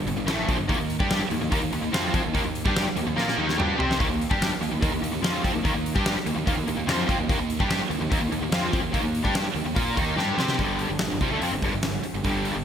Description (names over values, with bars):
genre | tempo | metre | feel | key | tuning
hard rock | 145 BPM | 4/4 | straight | unclear | A4 = 440 Hz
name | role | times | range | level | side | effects
crunchy overdriven guitar | riff | 0.0-12.6 s | G2 to C5 | -28 LUFS | left 6 dB | ensemble chorus
high-gain distorted guitar | riff | 0.0-12.6 s | G2 to C5 | -29 LUFS | right 10 dB | distortion
fuzz fingered electric bass | bass | 0.0-12.6 s | G1 to C3 | -31 LUFS | equal | overdrive
huge arena drum kit | drums | 0.1-12.5 s | hi-hat, kick drum, snare drum, toms | -27 LUFS | equal | gated reverb
room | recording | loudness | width
moderate lush hall reverb, RT60 1.8 s, small room ambience | bright 1980s-style digital production | -22 LUFS | side -8 dB against mid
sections
0.0-10.6 A section; 10.6-12.6 B section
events
drum fill 3.2-4.0, 10.2-10.6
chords
0.0 Gm; 0.7 Eb5; 10.6 G5